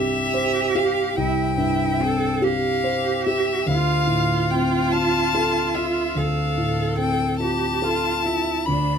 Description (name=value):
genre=classical, slow romantic movement for piano trio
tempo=48 BPM (dotted quarters)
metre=12/8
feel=rubato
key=unclear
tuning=A4 = 440 Hz
part: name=clear violin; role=melody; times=0.0-9.0 s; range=E5 to B5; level=-25 LUFS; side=left 7 dB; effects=none
part: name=rich cello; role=second line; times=0.0-9.0 s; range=D4 to A4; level=-24 LUFS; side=right 8 dB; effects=none
part: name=dark concert grand piano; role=accompaniment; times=0.0-9.0 s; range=C2 to C5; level=-22 LUFS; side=equal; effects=none
room=light reverb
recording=close, detailed microphones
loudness=-19 LUFS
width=side -7 dB against mid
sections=0.0-9.0 A section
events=none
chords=0.0 C; 3.7 Dm7